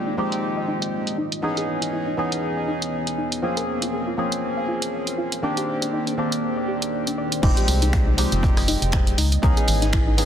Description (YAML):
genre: deep house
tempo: 120 BPM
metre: 4/4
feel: swing 57% on 16ths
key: F minor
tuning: A4 = 437 Hz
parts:
  - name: deep dark ambient pad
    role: sustained chords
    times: 0.0-10.3 s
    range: Eb3 to Eb5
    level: -30 LUFS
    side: right 1 dB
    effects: chorus, built-in reverb, sidechain pumping
  - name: percussive organ stab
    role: stabs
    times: 0.0-10.3 s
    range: Eb3 to Ab4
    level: -25 LUFS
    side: equal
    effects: wide subtle chorus, tape echo
  - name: soft round pluck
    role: arpeggios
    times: 0.1-10.1 s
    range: D4 to F5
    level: -31 LUFS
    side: left 2 dB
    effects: chorus, sidechain pumping, dub echo
  - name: punchy analog drum machine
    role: drums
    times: 0.3-10.3 s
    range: crash cymbal, finger snaps, hi-hat, rim click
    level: -26 LUFS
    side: right 1 dB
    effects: low-pass filter on hats, low-pass filter on cymbals, soft clipping on snare, low-pass filter on snare, low-pass filter on room
  - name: organ-like FM bass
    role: bass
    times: 7.4-10.3 s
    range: F1 to Db2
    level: -22 LUFS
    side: equal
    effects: sidechain pumping
  - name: electronic kick drum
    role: drums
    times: 7.4-10.0 s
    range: none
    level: -20 LUFS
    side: equal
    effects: none
  - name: warm soul drum kit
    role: drums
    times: 7.4-10.3 s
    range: hi-hat, snare drum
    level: -38 LUFS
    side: equal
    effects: none
room: light reverb, digital ambience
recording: dense, heavily limited modern master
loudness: -20 LUFS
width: side -9 dB against mid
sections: 0.0-7.4 A section; 7.4-10.3 B section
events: filter sweep on synth arpeggio sound 0.0-7.4; drop 7.4-10.3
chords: 0.0 Fm9; 1.2 Dbm9; 3.4 Bbm9; 5.4 Cm9; 7.4 Fm9; 9.2 Dbm9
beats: 0.43 0.93 | 1.43 1.93 2.43 2.93 | 3.43 3.93 4.43 4.93 | 5.43 5.93 6.43 6.93 | 7.43 7.93 8.43 8.93 | 9.43 9.93